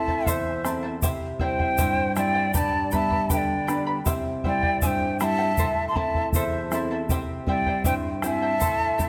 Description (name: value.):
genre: andean folk, Andean ensemble.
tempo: 79 BPM.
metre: 2/4.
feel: straight.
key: unclear.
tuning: A4 = 441 Hz.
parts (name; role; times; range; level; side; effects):
hollow quena; melody; 0.0-9.1 s; E5 to C6; -29 LUFS; equal; tape echo.
breathy mellow quena; second line; 0.0-9.1 s; C5 to A5; -32 LUFS; equal; none.
charango; accompaniment; 0.0-9.1 s; E4 to B5; -34 LUFS; equal; none.
nylon-string guitar; accompaniment; 0.0-9.1 s; E2 to E4; -31 LUFS; equal; none.
bombo; percussion; 0.1-9.1 s; none; -31 LUFS; equal; none.
egg shaker; percussion; 0.3-9.1 s; none; -36 LUFS; equal; none.
room: wet scoring stage reverb, RT60 1.6 s.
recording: none.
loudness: -24 LUFS.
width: mono.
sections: 0.0-9.1 A section.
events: none.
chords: 0.0 Am; 1.0 C; 2.5 G; 4.1 C; 5.6 Am; 7.1 C.